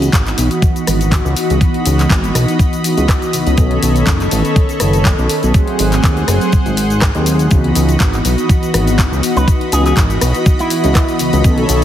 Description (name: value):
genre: nu-disco, nu disco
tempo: 122 BPM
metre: 4/4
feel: swing 54% on 16ths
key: C# minor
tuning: A4 = 440 Hz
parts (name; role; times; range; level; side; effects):
- mellow synth brass; accompaniment; 0.0-11.8 s; D#3 to D#5; -17 LUFS; equal; chorus, phaser, sidechain pumping, tape echo
- lush unison pad; sustained chords; 0.0-11.8 s; F#4 to B5; -23 LUFS; equal; chorus, sidechain pumping
- fat analog bass; bass; 0.0-11.8 s; F#1 to D#2; -15 LUFS; equal; none
- pop drum kit; drums; 0.0-11.8 s; handclaps, hi-hat, rim click, shaker; -21 LUFS; left 2 dB; small room ambience
- electronic kick drum; drums; 0.1-11.6 s; none; -13 LUFS; equal; small room ambience
- electric guitar with an envelope filter; melody; 9.4-11.3 s; E4 to B4; -21 LUFS; equal; analog chorus, ping-pong delay
room: light reverb, digital ambience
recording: heavily compressed radio sound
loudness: -11 LUFS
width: side -11 dB against mid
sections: 0.0-11.8 A section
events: filter sweep on analog polysynth 0.0-11.8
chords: 0.0 C#m11; 3.6 B9; 5.5 G#7b9; 7.5 C#m11